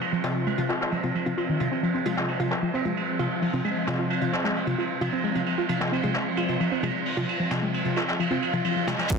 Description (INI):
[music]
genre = driving peak-time techno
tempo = 132 BPM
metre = 4/4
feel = straight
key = F minor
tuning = A4 = 441 Hz
[part]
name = swarming drone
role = drone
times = 0.0-9.2 s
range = F3 to C4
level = -32 LUFS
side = equal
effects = built-in reverb, sidechain pumping
[part]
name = jazz brush drum kit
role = drums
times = 0.0-9.2 s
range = hi-hat, ride cymbal, snare drum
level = -32 LUFS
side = right 1 dB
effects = high-pass filter on cymbals, low-pass filter on cymbals, high-pass filter on hats, low-pass filter on hats, soft clipping on snare, high-pass filter on snare, low-pass filter on snare, high-pass filter on room, low-pass filter on room
[part]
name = warbly dusty pluck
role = riff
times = 0.1-9.2 s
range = Eb3 to F4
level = -29 LUFS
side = equal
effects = chorus, tube saturation, sidechain pumping, ping-pong delay
[part]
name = wavetable chord stab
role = stabs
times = 0.2-9.0 s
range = C3 to F4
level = -30 LUFS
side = left 1 dB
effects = sidechain pumping, ping-pong delay
[part]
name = swell and sub drop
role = sound effects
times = 8.3-9.2 s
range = none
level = -33 LUFS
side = equal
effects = none
[part]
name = electronic kick drum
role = drums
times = 9.1-9.2 s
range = none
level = -23 LUFS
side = right 1 dB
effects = soft clipping on kick
[part]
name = techno drum kit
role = drums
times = 9.1-9.2 s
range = crash cymbal, hi-hat, shaker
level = -37 LUFS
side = left 1 dB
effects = sidechain pumping on cymbals, sidechain pumping on hats, sidechain pumping on perc
[sound]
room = wet lush hall reverb, RT60 1.6 s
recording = dense, heavily limited modern master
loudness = -24 LUFS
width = side -5 dB against mid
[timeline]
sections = 0.0-9.1 A section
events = swell 8.3-9.1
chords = 0.0 F5